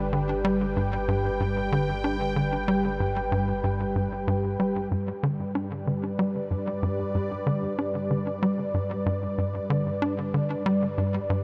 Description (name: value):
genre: ambient, sequencer-driven space music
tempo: 94 BPM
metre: 4/4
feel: straight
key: G major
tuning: A4 = 441 Hz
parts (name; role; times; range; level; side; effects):
- sweeping resonant pad; sustained chords; 0.0-11.4 s; G2 to G5; -31 LUFS; equal; chorus
- warm sub bass; bass; 0.0-4.9 s; G1; -38 LUFS; equal; none
- tight sequencer bass; riff; 0.1-11.4 s; G2 to D4; -29 LUFS; equal; delay
room: wet huge ambient reverb, RT60 8.2 s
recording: none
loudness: -27 LUFS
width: mono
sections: 0.0-4.9 A section; 4.9-11.4 B section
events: none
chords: 0.0 G